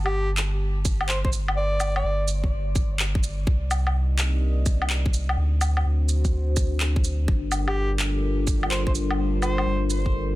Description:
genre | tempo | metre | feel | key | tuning
future garage | 126 BPM | 4/4 | swing 66% on 16ths | G minor | A4 = 440 Hz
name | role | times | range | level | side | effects
warm sub bass | bass | 0.0-10.4 s | G1 to D2 | -24 LUFS | equal | sidechain pumping
clear alto saxophone | melody | 0.1-2.3, 7.7-9.9 s | G4 to D5 | -31 LUFS | equal | tape echo
electronic woodblock, handclaps and shaker | drums | 0.1-10.0 s | none | -28 LUFS | equal | studio ambience
electronic kick drum | drums | 0.9-10.1 s | none | -23 LUFS | equal | studio ambience
dark analog pad | sustained chords | 3.5-10.4 s | G3 to Eb5 | -30 LUFS | left 2 dB | chorus, phaser, sidechain pumping
room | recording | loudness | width
digital ambience | dense, heavily limited modern master | -21 LUFS | side -17 dB against mid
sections
0.0-10.4 A section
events
none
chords
0.0 N.C.; 3.5 Cm9; 5.4 D7; 7.3 Gm9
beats
0.14 0.61 1.09 | 1.57 2.04 2.52 3.00 | 3.47 3.95 4.42 4.90 | 5.38 5.85 6.33 6.80 | 7.28 7.76 8.23 8.71 | 9.19 9.66 10.14

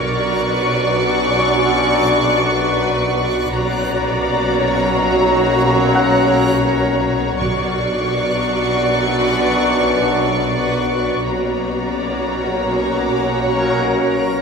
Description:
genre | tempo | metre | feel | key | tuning
cinematic | 62 BPM | 4/4 | straight | unclear | A4 = 442 Hz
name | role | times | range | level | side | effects
warm symphonic violin section | melody | 0.0-14.4 s | A#5 to C#6 | -22 LUFS | left 3 dB | none
rich symphonic violin section | second line | 0.0-14.4 s | C#5 to D5 | -23 LUFS | left 1 dB | none
warm studio viola section | accompaniment | 0.0-14.4 s | F#4 | -22 LUFS | right 2 dB | none
backwards swelling texture | sustained chords | 0.0-14.4 s | A#4 to F#5 | -25 LUFS | left 1 dB | built-in reverb
clear trombone section | sustained chords | 0.0-14.4 s | F#2 to F#3 | -24 LUFS | right 3 dB | none
mellow French horn section | sustained chords | 0.0-14.4 s | A#3 to D4 | -23 LUFS | left 4 dB | none
rich symphonic cello section | bass | 0.0-14.4 s | B2 | -26 LUFS | right 1 dB | none
warm symphonic double bass section | bass | 0.0-14.4 s | B1 | -26 LUFS | right 2 dB | none
organ-like drone | drone | 0.1-14.4 s | B1 | -29 LUFS | left 2 dB | none
timpani | percussion | 0.0-1.1, 7.4-8.8 s | B2 | -31 LUFS | right 2 dB | none
music box | texture | 0.0-14.4 s | F#5 to C#7 | -26 LUFS | left 2 dB | none
room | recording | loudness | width
wet scoring stage reverb, RT60 1.8 s | minimal, uncompressed stereo recording | -14 LUFS | side -5 dB against mid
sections
0.0-14.4 A section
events
none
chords
0.0 Bmadd9; 3.5 F#/B; 7.4 Bmadd9; 11.3 F#/B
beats
0.62 1.59 2.56 | 3.52 4.49 5.46 6.43 | 7.39 8.36 9.33 10.30 | 11.27 12.23 13.20 14.17

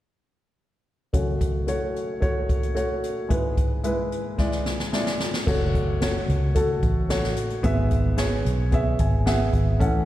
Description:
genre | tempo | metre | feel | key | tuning
piano-driven pop | 111 BPM | 4/4 | straight | F# minor | A4 = 440 Hz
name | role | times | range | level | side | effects
dark baby grand piano | accompaniment | 1.1-10.1 s | F#2 to G#5 | -25 LUFS | equal | slapback echo
jazz brush drum kit | drums | 1.1-9.9 s | crash cymbal, hi-hat, kick drum, snare drum | -25 LUFS | equal | none
vintage muted fingered electric bass | bass | 5.5-10.1 s | F#1 to C#2 | -24 LUFS | equal | none
room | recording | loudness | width
small room reverb | live gig heard through the venue's PA, recital hall reverb | -21 LUFS | side -14 dB against mid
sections
1.1-5.5 A section; 5.5-10.1 B section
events
drum fill 4.4-5.5; grand piano fill 8.7-9.8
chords
1.1 F#m; 3.3 E/G#; 5.5 F#m; 7.6 E/G#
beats
| 1.14 1.68 2.23 2.77 | 3.31 3.85 4.39 4.93 | 5.47 6.02 6.56 7.10 | 7.64 8.18 8.72 9.26 | 9.80

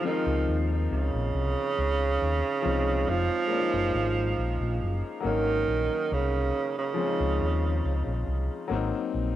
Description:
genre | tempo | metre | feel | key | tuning
lovers rock reggae | 69 BPM | 4/4 | straight | Db major | A4 = 440 Hz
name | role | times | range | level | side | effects
clear baby grand piano | accompaniment | 0.0-9.4 s | F3 to Eb4 | -32 LUFS | left 7 dB | cassette tape, plate reverb
warm tenor saxophone | melody | 0.1-8.5 s | Db3 to F3 | -28 LUFS | right 4 dB | cassette tape, tape echo, plate reverb
fingered electric bass | bass | 0.3-9.3 s | F1 to Eb2 | -28 LUFS | equal | none
room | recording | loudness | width
moderate booth ambience, RT60 0.2 s | home recording on cassette | -25 LUFS | side -12 dB against mid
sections
0.0-9.4 A section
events
none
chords
0.0 Dbmaj9; 3.5 Gb6; 5.2 Ab7sus4; 7.0 Dbmaj9; 8.7 Ab7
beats
| 0.03 0.90 1.77 2.63 | 3.50 4.37 5.24 6.11 | 6.97 7.84 8.71

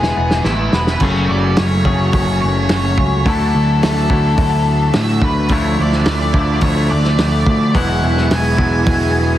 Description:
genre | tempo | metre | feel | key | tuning
indie rock | 107 BPM | 4/4 | straight | unclear | A4 = 440 Hz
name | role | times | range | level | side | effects
octave-fuzz lead guitar | melody | 0.0-9.4 s | G#4 to G#5 | -21 LUFS | left 2 dB | distortion, slapback echo
biting overdriven guitar | riff | 0.0-9.4 s | F#2 to E4 | -23 LUFS | right 6 dB | ensemble chorus, slapback echo
twangy electric guitar | riff | 0.0-9.4 s | E2 to G#4 | -20 LUFS | left 4 dB | none
growling picked electric bass | bass | 0.0-9.4 s | E1 to A2 | -17 LUFS | equal | overdrive
loose indie drum kit | drums | 0.0-9.0 s | crash cymbal, hi-hat, kick drum, snare drum | -19 LUFS | equal | none
brassy analog pad | sustained chords | 1.0-9.4 s | F3 to E6 | -29 LUFS | equal | chorus
room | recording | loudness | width
light reverb | heavily compressed radio sound, multiband compression | -12 LUFS | side -12 dB against mid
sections
0.0-1.0 A section; 1.0-9.4 B section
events
drum fill 0.0-1.0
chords
0.0 E; 1.0 F#madd9; 3.3 Dadd9; 5.5 Dmadd9; 7.7 Eadd9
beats
0.45 | 1.01 1.57 2.13 2.69 | 3.26 3.82 4.38 4.94 | 5.50 6.06 6.63 7.19 | 7.75 8.31 8.87

